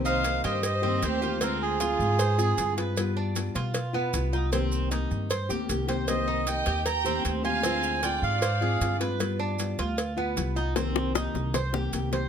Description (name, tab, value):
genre	latin, Cuban son and guajira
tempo	154 BPM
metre	4/4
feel	straight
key	C minor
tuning	A4 = 440 Hz
part	nylon-string guitar	accompaniment	0.0-12.3 s	C3 to G4	-32 LUFS	left 5 dB	none
part	upright bass	bass	0.0-12.3 s	C2 to B2	-30 LUFS	equal	none
part	melodica	melody	0.1-2.7, 6.1-9.0 s	Ab4 to Bb5	-28 LUFS	right 4 dB	slapback echo
part	warm studio violin section	second line	0.1-2.7, 6.1-9.0 s	F4 to G5	-34 LUFS	equal	none
part	Cuban tres	arpeggios	0.1-12.3 s	B3 to C5	-33 LUFS	right 5 dB	none
part	maracas	percussion	0.1-12.3 s	none	-39 LUFS	right 6 dB	none
part	cowbell and bongos	percussion	0.2-12.3 s	none	-33 LUFS	left 3 dB	none
room	light reverb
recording	close, detailed microphones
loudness	-25 LUFS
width	side -8 dB against mid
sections	0.0-12.3 A section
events	drum fill 10.8-12.3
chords	0.0 Cm7; 1.4 Dm7b5; 3.0 G7; 4.5 Cm7; 7.6 Dm7b5; 9.2 G7; 10.8 Cm7